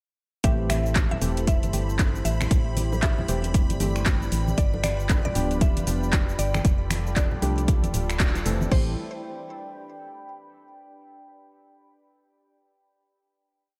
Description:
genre	deep house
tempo	116 BPM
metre	4/4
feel	swing 60% on 16ths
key	A minor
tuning	A4 = 440 Hz
part	mallet-like synth pluck	melody	0.4-8.9 s	C5 to E5	-36 LUFS	equal	chorus, delay
part	warm analog pad	sustained chords	0.4-9.0 s	G3 to D5	-39 LUFS	equal	chorus, vintage 12-bit sampler grit, sidechain pumping
part	warm analog keys	stabs	0.4-9.0 s	E3 to A4	-35 LUFS	equal	chorus, sidechain pumping, diffuse ambient delay
part	organ-like FM bass	bass	0.4-9.0 s	D1 to C2	-29 LUFS	equal	none
part	deep house drum kit	drums	0.4-8.8 s	crash cymbal, finger snaps, handclaps, hi-hat, shaker	-33 LUFS	equal	overdrive
part	electronic kick drum	drums	0.4-8.8 s	none	-25 LUFS	equal	overdrive
part	deep dark ambient pad	texture	3.5-10.7 s	D5 to B5	-43 LUFS	equal	chorus, built-in reverb, sidechain pumping
part	string machine, violins	texture	0.4-8.7 s	B5	-45 LUFS	equal	ensemble chorus
part	bongos and congas	percussion	0.7-8.7 s	none	-36 LUFS	equal	sidechain pumping on perc
room	light reverb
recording	none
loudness	-24 LUFS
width	mono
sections	0.4-8.7 drop; 8.7-10.8 final chord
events	drop 0.4-8.7; band accent 8.2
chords	0.4 Am7; 4.6 G7; 6.6 F69; 8.7 Am7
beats	| 0.44 0.96 1.47 1.99 | 2.51 3.03 3.54 4.06 | 4.58 5.09 5.61 6.13 | 6.65 7.16 7.68 8.20 | 8.72 9.23 9.75 10.27

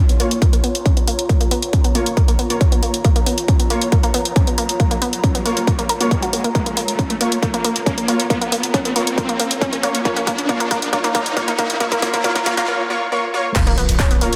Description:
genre	driving peak-time techno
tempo	137 BPM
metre	4/4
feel	straight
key	Bb phrygian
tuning	A4 = 440 Hz
part	analog pluck	riff	0.0-14.3 s	Bb3 to Bb4	-25 LUFS	equal	chorus, tube saturation, sidechain pumping, delay
part	riser and impact	sound effects	0.0-14.4 s	none	-29 LUFS	equal	none
part	airy breathy pad	texture	0.0-14.4 s	F4 to Bb5	-31 LUFS	equal	chorus, sidechain pumping
part	techno drum kit	drums	0.1-14.4 s	crash cymbal, handclaps, hi-hat	-26 LUFS	equal	overdrive, high-pass filter on snare, studio reverb, sidechain pumping on hats, high-pass filter on hats, sidechain pumping on cymbals, high-pass filter on cymbals
part	rave stab	stabs	0.2-14.3 s	Bb3 to Db5	-26 LUFS	equal	chorus, built-in reverb, sidechain pumping, delay
part	electronic kick drum	drums	0.4-14.1 s	none	-20 LUFS	equal	distortion, overdrive, studio reverb
part	damped 70s drum kit	drums	13.6-14.4 s	hi-hat, shaker, snare drum	-35 LUFS	equal	none
part	saturated sub bass	bass	13.7-14.4 s	Bb1	-22 LUFS	equal	tube saturation, sidechain pumping, low-pass filter
room	moderate lush hall reverb, RT60 2.2 s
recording	dense, heavily limited modern master, high-pass filter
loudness	-18 LUFS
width	mono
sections	0.0-13.6 A section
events	build-up 0.0-13.6; riser 0.0-12.7; filter sweep on synth arpeggio sound 0.0-13.6; filter sweep 0.0-13.6; drum fill 6.5-12.7; impact 13.6-14.4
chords	0.0 Bbm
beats	0.42 0.86 | 1.29 1.73 2.17 2.61 | 3.05 3.48 3.92 4.36 | 4.80 5.24 5.67 6.11 | 6.55 6.99 7.43 7.86 | 8.30 8.74 9.18 9.62 | 10.05 10.49 10.93 11.37 | 11.80 12.24 12.68 13.12 | 13.56 13.99

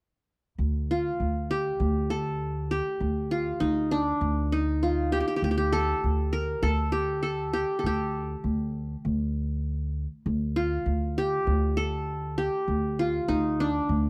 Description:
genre	arabic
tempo	99 BPM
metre	4/4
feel	straight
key	D maqam kurd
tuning	A4 = 440 Hz
part	upright bass	bass	0.6-14.1 s	D2	-31 LUFS	equal	none
part	qanun	melody	0.9-14.1 s	D4 to Bb4	-30 LUFS	equal	none
room	little or no reverb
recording	dry, close 1970s-style studio recording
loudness	-28 LUFS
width	mono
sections	0.6-14.1 A section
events	none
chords	none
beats	| 0.59 1.20 1.80 2.40 | 3.00 3.61 4.21 4.82 | 5.42 6.02 6.63 7.23 | 7.84 8.44 9.05 9.65 | 10.26 10.87 11.47 12.08 | 12.68 13.29 13.89

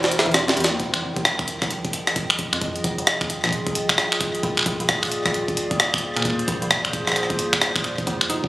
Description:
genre	IDM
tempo	132 BPM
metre	4/4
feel	swing 62% on 16ths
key	F dorian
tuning	A4 = 440 Hz
part	warbly tape-like pad	sustained chords	0.0-8.5 s	E3 to G5	-27 LUFS	equal	chorus, built-in reverb
part	metallic FM bass	bass	0.0-8.5 s	E1 to Bb2	-31 LUFS	equal	none
part	jungle sampler-style drum kit	drums	0.0-8.4 s	finger snaps, hi-hat, rim click, snare drum, toms	-21 LUFS	equal	digital delay
part	mallet-like synth pluck	arpeggios	0.3-0.7, 8.3-8.4 s	E3 to G4	-30 LUFS	left 1 dB	chorus, ping-pong delay
part	electronic kick drum	drums	0.8-8.5 s	none	-28 LUFS	equal	none
room	moderate lush hall reverb, RT60 2.0 s, digital ambience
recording	recorded on a phone in the room, club reverb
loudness	-19 LUFS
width	side -17 dB against mid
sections	0.8-8.5 A section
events	break 0.0-0.8; drum fill 0.0-0.8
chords	0.0 C7/E; 0.8 Fm9; 4.4 Bb9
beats	0.34 | 0.80 1.25 1.71 2.16 | 2.62 3.07 3.52 3.98 | 4.43 4.89 5.34 5.80 | 6.25 6.71 7.16 7.62 | 8.07

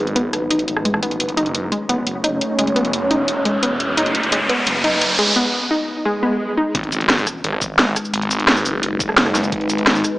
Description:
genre	dark technical drum and bass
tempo	173 BPM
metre	4/4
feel	straight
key	G# phrygian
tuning	A4 = 440 Hz
part	deep dark ambient pad	sustained chords	0.0-10.2 s	G#3 to C#5	-23 LUFS	equal	chorus, built-in reverb, sidechain pumping
part	wide unison pluck	arpeggios	0.0-6.7 s	G#3 to D#4	-20 LUFS	equal	sidechain pumping, tape echo
part	phased detuned saw bass	bass	0.0-10.0 s	E1 to A1	-24 LUFS	equal	phaser
part	drum and bass drum kit	drums	0.1-10.1 s	cabasa, hi-hat, rim click, snare drum	-18 LUFS	equal	high-pass filter on hats, high-pass filter on snare, high-pass filter on perc
part	riser, swell and impact	sound effects	2.5-8.1 s	none	-22 LUFS	equal	none
part	electronic kick drum	drums	6.7-9.6 s	none	-28 LUFS	equal	overdrive
room	moderate lush hall reverb, RT60 1.8 s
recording	small speaker sound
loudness	-16 LUFS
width	side -18 dB against mid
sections	0.0-6.7 A section; 6.7-10.2 B section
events	build-up 0.0-6.7; filter sweep on synth arpeggio sound 0.0-6.7; riser 2.5-5.4; break 5.4-6.7; swell 6.1-6.7; drop 6.7-10.2; impact 6.7-8.1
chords	0.0 G#m7; 1.2 F#m; 6.7 G#m7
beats	0.16 0.51 0.85 | 1.20 1.55 1.89 2.24 | 2.59 2.93 3.28 3.63 | 3.97 4.32 4.67 5.01 | 5.36 5.71 6.05 6.40 | 6.75 7.09 7.44 7.79 | 8.14 8.48 8.83 9.18 | 9.52 9.87

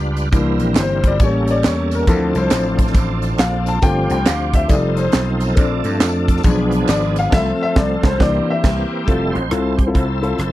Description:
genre	uptempo gospel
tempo	137 BPM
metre	4/4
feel	swing 62% on 8ths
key	F major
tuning	A4 = 445 Hz
part	bright tonewheel organ	sustained chords	0.0-10.5 s	E3 to C5	-23 LUFS	right 2 dB	slow rotary speaker, overdrive, chorus vibrato
part	vintage slap bass	bass	0.0-10.5 s	F1 to G2	-20 LUFS	equal	none
part	crisp fusion drum kit	drums	0.2-10.5 s	crash cymbal, hi-hat, kick drum, rim click, snare drum	-16 LUFS	right 1 dB	none
part	tambourine and handclaps	percussion	0.2-7.2 s	none	-31 LUFS	right 6 dB	none
part	warm grand piano	accompaniment	0.3-10.4 s	E3 to A5	-20 LUFS	left 3 dB	none
room	little or no reverb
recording	dry, close 1970s-style studio recording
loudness	-14 LUFS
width	side -15 dB against mid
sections	0.0-9.1 A section; 9.1-10.5 B section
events	grand piano solo 0.0-9.1; band accent 7.3-9.1; tonewheel organ solo 9.1-10.5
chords	0.3 C7; 1.2 A7b9; 2.1 Dm7; 3.8 G7sus4; 4.7 F7; 5.6 Bbmaj7; 6.5 Bdim7; 7.3 F/C; 8.2 C7; 9.1 Fmaj7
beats	| 0.33 0.77 1.20 1.64 | 2.08 2.52 2.96 3.39 | 3.83 4.27 4.71 5.14 | 5.58 6.02 6.46 6.89 | 7.33 7.77 8.20 8.64 | 9.08 9.51 9.95 10.39

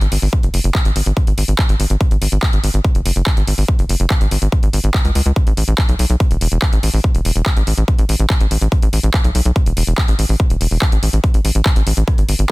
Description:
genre	psychedelic trance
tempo	143 BPM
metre	4/4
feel	straight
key	unclear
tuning	A4 = 439 Hz
part	tight sequencer bass	bass	0.0-12.5 s	E1 to C#2	-15 LUFS	equal	none
part	techno drum kit	drums	0.0-12.5 s	handclaps, hi-hat, rim click	-22 LUFS	equal	overdrive, small room ambience
part	electronic kick drum	drums	0.3-12.2 s	none	-16 LUFS	equal	small room ambience
room	little or no reverb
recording	dense, heavily limited modern master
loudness	-13 LUFS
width	side -22 dB against mid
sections	0.0-12.5 A section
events	none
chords	none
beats	| 0.33 0.75 1.17 1.59 | 2.01 2.43 2.85 3.27 | 3.69 4.10 4.52 4.94 | 5.36 5.78 6.20 6.62 | 7.04 7.46 7.88 8.30 | 8.72 9.14 9.56 9.98 | 10.40 10.82 11.24 11.66 | 12.08

